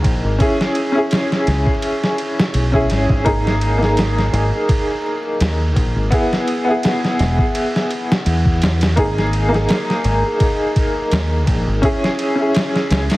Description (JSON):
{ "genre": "trip hop", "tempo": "84 BPM", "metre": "4/4", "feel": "swing 54% on 16ths", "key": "G# minor", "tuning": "A4 = 440 Hz", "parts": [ { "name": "clear upright piano", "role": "accompaniment", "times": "0.0-13.2 s", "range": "A#3 to G#4", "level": "-18 LUFS", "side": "equal", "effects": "tremolo, vintage 12-bit sampler grit, tape echo" }, { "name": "deep dub fingered electric bass", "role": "bass", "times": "0.0-13.1 s", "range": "E1 to E2", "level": "-18 LUFS", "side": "equal", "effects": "none" }, { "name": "boom bap sampler-style drum kit", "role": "drums", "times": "0.0-13.2 s", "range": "kick drum, ride cymbal, snare drum", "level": "-19 LUFS", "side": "equal", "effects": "none" } ], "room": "light reverb", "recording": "heavily compressed radio sound, multiband compression, vinyl crackle", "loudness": "-15 LUFS", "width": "side -18 dB against mid", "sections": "0.0-13.2 A section", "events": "none", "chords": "0.4 C#m; 3.3 G#sus2; 6.1 E; 9.0 G#sus2; 11.8 C#m" }